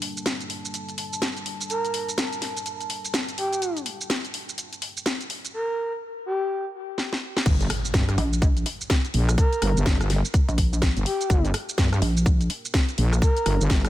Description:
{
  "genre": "bass house",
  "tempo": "125 BPM",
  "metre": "4/4",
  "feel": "swing 61% on 16ths",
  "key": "G minor",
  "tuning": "A4 = 437 Hz",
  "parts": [
    { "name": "dark analog pad", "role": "sustained chords", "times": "0.0-13.9 s", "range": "G3 to A5", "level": "-38 LUFS", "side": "right 1 dB", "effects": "lush chorus, sidechain pumping" },
    { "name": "garage drum kit", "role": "drums", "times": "0.0-13.9 s", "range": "crash cymbal, hi-hat, rim click, shaker, snare drum", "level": "-28 LUFS", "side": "equal", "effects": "none" },
    { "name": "breathy flute-like synth lead", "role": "melody", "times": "1.7-13.6 s", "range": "G4 to Bb4", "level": "-29 LUFS", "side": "equal", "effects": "chorus, ping-pong delay" },
    { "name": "wobble bass", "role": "bass", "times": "7.5-13.9 s", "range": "G1 to G2", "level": "-22 LUFS", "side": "equal", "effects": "chorus, overdrive, sidechain pumping" },
    { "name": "electronic kick drum", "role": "drums", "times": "7.5-13.8 s", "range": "none", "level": "-21 LUFS", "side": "equal", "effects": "none" },
    { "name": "impact", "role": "sound effects", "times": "7.5-9.4 s", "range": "none", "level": "-31 LUFS", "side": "equal", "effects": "none" },
    { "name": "pulsing pluck wobble bass", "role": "bass", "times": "8.2-12.5 s", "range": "Bb1", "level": "-23 LUFS", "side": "equal", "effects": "chorus, tube saturation, sidechain pumping" }
  ],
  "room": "little or no reverb",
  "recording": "none",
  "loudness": "-22 LUFS",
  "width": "side -14 dB against mid",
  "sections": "0.0-7.5 A section; 7.5-13.9 B section",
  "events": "drum fill 7.0-7.5; drop 7.5-13.9; impact 7.5-9.4",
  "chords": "0.0 Gm",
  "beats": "0.26 0.74 1.22 | 1.70 2.18 2.66 3.14 | 3.62 4.10 4.58 5.06 | 5.54 6.02 6.50 6.98 | 7.46 7.94 8.42 8.90 | 9.38 9.86 10.34 10.82 | 11.30 11.78 12.26 12.74 | 13.22 13.70"
}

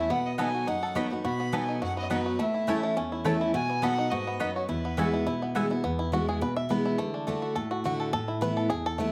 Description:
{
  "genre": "bluegrass",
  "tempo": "209 BPM",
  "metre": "4/4",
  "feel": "swing 54% on 8ths",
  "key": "E major",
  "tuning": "A4 = 438 Hz",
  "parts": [
    { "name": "bluegrass banjo", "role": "melody", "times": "0.0-9.1 s", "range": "A3 to E5", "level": "-34 LUFS", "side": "equal", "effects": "none" },
    { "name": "rich fiddle", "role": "melody", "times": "0.0-5.5 s", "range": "B4 to B5", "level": "-35 LUFS", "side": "equal", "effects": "none" },
    { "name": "picked steel-string acoustic guitar", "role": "accompaniment", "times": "0.0-9.1 s", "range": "E2 to F#4", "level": "-31 LUFS", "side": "equal", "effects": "none" },
    { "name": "mandolin", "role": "stabs", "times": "0.4-5.7 s", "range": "A3 to B5", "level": "-38 LUFS", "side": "equal", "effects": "none" }
  ],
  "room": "moderate large studio reverb, RT60 1.1 s",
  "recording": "none",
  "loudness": "-29 LUFS",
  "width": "mono",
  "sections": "0.0-5.8 A section; 5.8-9.1 B section",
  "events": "five-string banjo solo 5.8-9.1",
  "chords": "0.1 B; 2.4 A; 3.5 B; 4.7 Eadd9; 5.8 E; 7.0 D; 8.1 Asus2",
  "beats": "| 0.10 0.39 0.67 0.96 | 1.25 1.53 1.82 2.11 | 2.40 2.68 2.97 3.26 | 3.54 3.83 4.12 4.40 | 4.69 4.98 5.26 5.55 | 5.84 6.12 6.41 6.70 | 6.98 7.27 7.56 7.84 | 8.13 8.42 8.70 8.99"
}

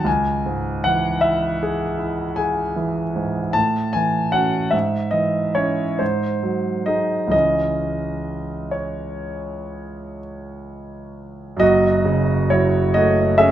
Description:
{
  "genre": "classical, romantic nocturne for solo piano",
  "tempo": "41-54 BPM (dotted quarters)",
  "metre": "9/8",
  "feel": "rubato",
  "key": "C# minor",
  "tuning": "A4 = 442 Hz",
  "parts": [
    { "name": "clear concert grand piano", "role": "solo", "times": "0.0-13.5 s", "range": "F#1 to A5", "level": "-18 LUFS", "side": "right 1 dB", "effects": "none" }
  ],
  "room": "light reverb",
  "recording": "close, detailed microphones",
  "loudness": "-18 LUFS",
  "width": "side -11 dB against mid",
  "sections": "0.0-11.6 A section; 11.6-13.5 B section",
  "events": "none",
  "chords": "0.1 C#m; 3.5 A6; 4.7 C#m/G#; 6.0 G#7; 7.3 C#m; 11.6 F#m",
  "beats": "| 0.06 1.22 2.37 | 3.55 4.73 6.00 | 7.33 8.74 10.18 | 11.61 12.94"
}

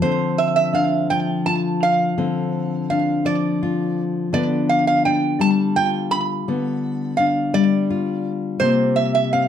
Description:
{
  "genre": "folk",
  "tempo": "56 BPM (dotted quarters)",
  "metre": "6/8",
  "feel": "straight",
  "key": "unclear",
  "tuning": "A4 = 441 Hz",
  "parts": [
    { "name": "metal-body resonator slide guitar", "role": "melody", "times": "0.0-9.5 s", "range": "C5 to B5", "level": "-20 LUFS", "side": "right 3 dB", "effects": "slapback echo" },
    { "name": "nylon-string guitar", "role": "accompaniment", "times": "0.0-9.5 s", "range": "C3 to A4", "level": "-20 LUFS", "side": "left 3 dB", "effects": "none" }
  ],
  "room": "moderate studio reverb, RT60 0.6 s",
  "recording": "dark, warm production",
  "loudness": "-17 LUFS",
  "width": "side -9 dB against mid",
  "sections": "0.0-9.5 A section",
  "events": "none",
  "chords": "0.0 Dm7; 4.3 G7/D; 8.6 C7sus4",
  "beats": "| 0.03 1.10 | 2.18 3.25 | 4.33 5.40 | 6.47 7.55 | 8.62"
}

